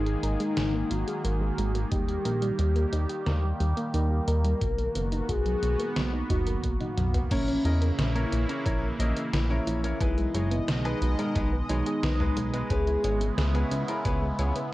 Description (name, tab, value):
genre	synthwave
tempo	89 BPM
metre	4/4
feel	straight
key	G# minor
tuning	A4 = 439 Hz
part	soft octave-layered synth lead	melody	0.0-13.6 s	C#4 to A#4	-32 LUFS	left 1 dB	chorus, phaser, vintage 12-bit sampler grit, cassette tape, analog delay
part	phased analog pad	sustained chords	0.0-14.7 s	B2 to D#5	-34 LUFS	right 1 dB	phaser, chorus, sidechain pumping, cassette tape
part	chorused synth bass	bass	0.0-14.5 s	F#1 to E2	-27 LUFS	equal	sidechain pumping
part	soft round pluck	arpeggios	0.1-14.7 s	F#3 to C#5	-36 LUFS	right 2 dB	chorus, cassette tape, analog delay
part	detuned 8-bit digital drum machine	drums	0.1-14.7 s	crash cymbal, hi-hat, snare drum, toms	-33 LUFS	equal	cassette tape
part	electronic kick drum	drums	1.9-14.2 s	none	-30 LUFS	equal	cassette tape
part	bright baby grand piano	stabs	7.3-14.6 s	G#3 to D#5	-34 LUFS	left 2 dB	cassette tape
room	light reverb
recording	home recording on cassette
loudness	-25 LUFS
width	side -17 dB against mid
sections	0.0-7.3 A section; 7.3-14.7 B section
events	drum fill 6.8-7.3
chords	0.0 G#sus2; 1.9 D#; 4.6 Bmaj7; 7.3 A#dim; 10.0 G#m; 12.7 C#m7